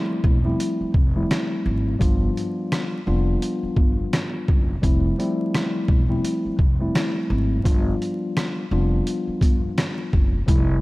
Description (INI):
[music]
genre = hip hop, boom-bap hip-hop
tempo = 85 BPM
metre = 4/4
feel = swing 59% on 16ths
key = unclear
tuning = A4 = 440 Hz
[part]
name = mellow tine electric piano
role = accompaniment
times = 0.0-10.8 s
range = F3 to F4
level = -24 LUFS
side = left 1 dB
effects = slow stereo tremolo, high-pass filter, low-pass filter
[part]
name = upright bass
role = bass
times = 0.2-10.8 s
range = E1 to Ab1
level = -23 LUFS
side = equal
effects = none
[part]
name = trip hop sampler-style drum kit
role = drums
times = 0.2-10.7 s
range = hi-hat, kick drum, rim click, snare drum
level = -21 LUFS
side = equal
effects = none
[sound]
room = little or no reverb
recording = vinyl crackle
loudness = -19 LUFS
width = side -20 dB against mid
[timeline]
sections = 0.0-10.8 A section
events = none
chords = 0.0 Fmaj9; 2.0 G7; 4.8 Fmaj9; 7.7 G7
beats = 0.60 1.30 | 2.01 2.71 3.42 4.13 | 4.83 5.54 6.24 6.95 | 7.66 8.36 9.07 9.77 | 10.48